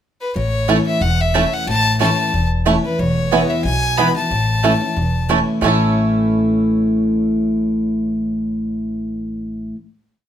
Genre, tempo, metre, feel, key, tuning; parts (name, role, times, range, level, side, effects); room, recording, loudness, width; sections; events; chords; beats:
bluegrass; 182 BPM; 4/4; swing 54% on 8ths; A major; A4 = 440 Hz
clear fiddle; melody; 0.2-5.3 s; B4 to B5; -20 LUFS; left 2 dB; plate reverb
picked steel-string acoustic guitar; accompaniment; 0.4-9.8 s; E2 to E4; -19 LUFS; left 1 dB
upright bass; bass; 0.4-9.7 s; E1 to B1; -22 LUFS; equal
bluegrass banjo; arpeggios; 0.7-9.7 s; A3 to A4; -21 LUFS; right 4 dB
mandolin; stabs; 0.7-9.8 s; A3 to A5; -22 LUFS; right 7 dB
moderate small room reverb, RT60 0.5 s; -15 LUFS; side -10 dB against mid
0.0-0.4 pickup bar; 0.4-5.6 A section; 5.6-8.3 final chord
0.4 A; 3.0 E; 4.3 A
0.03 | 0.36 0.69 1.02 1.34 | 1.67 2.00 2.33 2.66 | 2.99 3.32 3.65 3.98 | 4.31 4.64 4.97 5.30 | 5.63 5.96 6.29 6.61 | 6.94 7.27 7.60 7.92